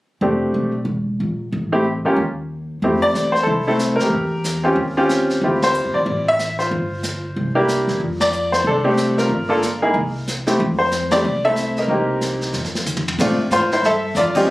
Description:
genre	jazz piano trio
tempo	185 BPM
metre	4/4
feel	swing 62% on 8ths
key	F major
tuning	A4 = 437 Hz
part	clear baby grand piano	melody	0.2-14.5 s	G3 to E5	-17 LUFS	equal	none
part	upright bass	bass	0.2-14.5 s	E1 to Bb2	-25 LUFS	equal	none
part	vintage brush drum kit	drums	2.8-14.5 s	brushed snare drum, crash cymbal, hi-hat, kick drum, ride cymbal, snare drum, toms	-27 LUFS	equal	none
room	light reverb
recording	recorded on a phone in the room, club reverb, compression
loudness	-17 LUFS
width	side -18 dB against mid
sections	0.2-2.8 A section; 2.8-13.2 B section; 13.2-14.5 C section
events	band accent 5.6, 8.2, 11.1, 14.3; drum fill 12.5-13.2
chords	0.2 F6; 0.9 N.C.; 1.5 A7(no3); 2.2 N.C.; 2.8 Fmaj7; 4.1 Edim; 4.8 Eb13; 5.4 Dm11; 6.7 G7sus4; 7.4 C9; 8.0 F6; 9.3 Gm7; 9.9 N.C.; 10.6 Fmaj7; 11.9 Cm7; 12.5 N.C.; 13.2 Bbmaj9

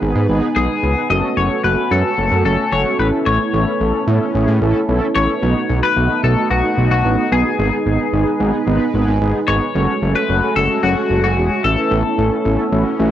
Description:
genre	pop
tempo	111 BPM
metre	4/4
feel	straight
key	B mixolydian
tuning	A4 = 440 Hz
part	mellow synth brass	accompaniment	0.0-13.1 s	B3 to B4	-21 LUFS	equal	chorus, cassette tape
part	sweeping resonant pad	sustained chords	0.0-13.1 s	G#3 to B4	-24 LUFS	equal	chorus, cassette tape
part	vibraphone with soft mallets	arpeggios	0.0-13.1 s	G#3 to A5	-24 LUFS	right 8 dB	cassette tape, analog delay
part	fat analog bass	bass	0.0-13.1 s	E1 to A2	-17 LUFS	equal	none
part	twelve-string electric guitar	melody	0.6-13.1 s	F#4 to D#5	-19 LUFS	left 6 dB	lush chorus, cassette tape, analog delay
room	moderate studio reverb, RT60 0.6 s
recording	home recording on cassette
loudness	-14 LUFS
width	side -11 dB against mid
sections	0.0-5.4 A section; 5.4-13.1 B section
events	none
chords	0.0 G#m; 1.1 F#madd9; 3.0 Aadd9; 5.4 B7; 7.6 G#m; 9.7 F#madd9; 11.6 Aadd9

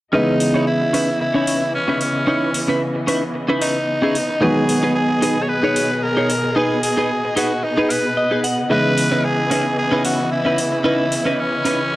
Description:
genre	nu-disco, nu disco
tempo	112 BPM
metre	4/4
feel	swing 54% on 16ths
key	C# minor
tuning	A4 = 441 Hz
part	raspy tenor saxophone	melody	0.1-12.0 s	C#4 to C#5	-21 LUFS	equal	tape echo
part	warm grand piano	accompaniment	0.1-12.0 s	C#3 to D#5	-23 LUFS	equal	none
part	muted studio string section	sustained chords	0.1-12.0 s	B2 to D#5	-24 LUFS	equal	low-pass filter
part	direct-recorded clean electric guitar	riff	0.1-12.0 s	C#4 to F#5	-20 LUFS	equal	analog chorus, low-pass filter
part	electronic hi-hat	drums	0.4-11.8 s	none	-27 LUFS	equal	overdrive
room	moderate echo chamber reverb, RT60 2.2 s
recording	dry, gritty hardware recording, cassette tape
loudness	-16 LUFS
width	side -16 dB against mid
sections	0.1-12.0 A section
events	clean electric guitar fill 7.9-8.7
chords	0.1 C#m9; 4.4 B6; 8.7 C#m9

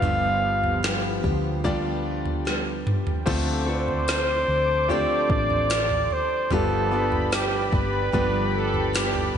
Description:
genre	pop ballad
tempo	74 BPM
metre	4/4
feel	straight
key	unclear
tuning	A4 = 440 Hz
part	warm flugelhorn	melody	0.0-9.4 s	G4 to F5	-25 LUFS	right 1 dB	slapback echo
part	clear concert grand piano	accompaniment	0.0-9.4 s	G2 to D5	-30 LUFS	left 2 dB	slapback echo
part	lush unison pad	sustained chords	0.0-9.4 s	F3 to D6	-32 LUFS	left 1 dB	chorus
part	picked steel-string acoustic guitar	arpeggios	0.0-9.4 s	G2 to A4	-32 LUFS	right 2 dB	slapback echo
part	hollow-body short-scale fingered electric bass	bass	0.0-9.4 s	G1 to D2	-29 LUFS	equal	none
part	smooth R&B drum kit	drums	0.0-9.4 s	crash cymbal, kick drum, snare drum, toms	-27 LUFS	equal	none
part	tambourine	percussion	4.1-9.1 s	none	-39 LUFS	left 12 dB	none
part	muted French horn section	second line	8.5-9.4 s	G4 to A4	-28 LUFS	right 3 dB	slapback echo, ping-pong delay
room	moderate lush hall reverb, RT60 2.6 s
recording	big arena sound, nothing above 10.9 kHz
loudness	-21 LUFS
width	side -8 dB against mid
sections	0.0-3.3 A section; 3.3-9.4 B section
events	drum fill 2.5-3.3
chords	0.0 G7; 3.3 Dm7; 6.5 G7

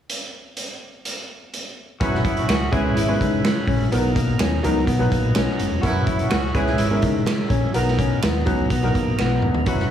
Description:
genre	uptempo 1960s-style soul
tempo	125 BPM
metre	4/4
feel	straight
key	B major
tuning	A4 = 439 Hz
part	raw garage drum kit	drums	0.1-9.9 s	hi-hat, kick drum, snare drum, toms	-23 LUFS	equal	none
part	clear horn section	second line	2.0-7.0 s	B3 to G#4	-28 LUFS	right 4 dB	plate reverb
part	clear upright piano	accompaniment	2.0-9.9 s	F#3 to B4	-24 LUFS	right 1 dB	plate reverb
part	tonewheel organ	sustained chords	2.0-9.9 s	B3 to B5	-32 LUFS	right 4 dB	fast rotary speaker, plate reverb
part	electric guitar through a small old amp	riff	2.0-9.9 s	A#3 to G#4	-26 LUFS	left 6 dB	none
part	vintage muted fingered electric bass	bass	2.0-9.9 s	E1 to C#3	-24 LUFS	equal	none
part	finger snap	percussion	2.5-9.3 s	none	-31 LUFS	right 7 dB	none
room	light reverb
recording	small room ambience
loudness	-18 LUFS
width	side -10 dB against mid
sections	0.1-2.0 A section; 2.0-9.7 B section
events	drum fill 9.2-9.7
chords	0.1 N.C.; 2.0 F#7sus4; 2.7 C#m7; 3.9 Bmaj7; 5.8 F#7sus4; 6.6 C#m7; 7.7 Bmaj7

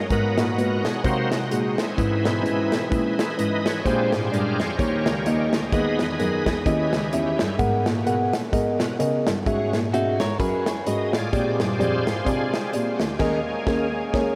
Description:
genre	uptempo gospel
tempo	128 BPM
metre	4/4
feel	swing 58% on 8ths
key	G# minor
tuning	A4 = 439 Hz
part	bright tonewheel organ	sustained chords	0.0-14.4 s	E3 to D#5	-31 LUFS	equal	slow rotary speaker, overdrive, chorus vibrato
part	dark cello	bass	0.0-14.3 s	C#2 to C#3	-31 LUFS	equal	none
part	mellow tine electric piano	accompaniment	0.1-14.3 s	G#2 to F#5	-26 LUFS	equal	none
part	modern studio drum kit	drums	0.1-14.3 s	crash cymbal, hi-hat, kick drum, snare drum	-30 LUFS	equal	none
part	clean electric guitar	second line	9.9-11.1 s	D#4 to C#5	-35 LUFS	equal	subtle chorus
room	wet huge ambient reverb, RT60 7.4 s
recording	dreamy mix soaked in reverb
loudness	-23 LUFS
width	mono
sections	0.0-14.4 A section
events	tonewheel organ solo 0.0-14.4; band accent 13.2-14.4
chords	0.1 G#m9; 1.0 G#7/B#; 2.0 C#m7/G#; 3.9 A#13; 4.8 D#7; 5.7 G#m/D#; 6.7 D#7b9; 7.6 G#m9; 9.5 E69/G#; 11.3 A#13; 13.2 D#7sus4

